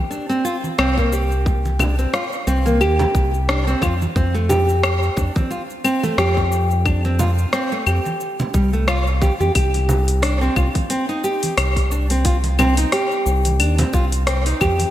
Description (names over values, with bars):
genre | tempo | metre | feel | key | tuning
organic downtempo | 89 BPM | 4/4 | swing 56% on 16ths | C dorian | A4 = 441 Hz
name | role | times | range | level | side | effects
nylon-string guitar | arpeggios | 0.0-14.9 s | G3 to G4 | -21 LUFS | equal | digital delay
afro-pop drum kit | drums | 0.1-14.9 s | claves, hi-hat, rim click, shaker | -24 LUFS | left 2 dB | small room ambience, gated reverb
congas | percussion | 0.6-14.9 s | none | -27 LUFS | right 2 dB | none
round analog bass | bass | 0.8-14.9 s | C2 to F2 | -19 LUFS | equal | none
electronic kick drum | drums | 1.0-14.8 s | none | -22 LUFS | equal | small room ambience
room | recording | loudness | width
moderate lush hall reverb, RT60 2.1 s | bright 1980s-style digital production | -16 LUFS | side -12 dB against mid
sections
0.0-14.9 A section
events
none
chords
0.0 C5; 4.2 F5; 9.6 Cm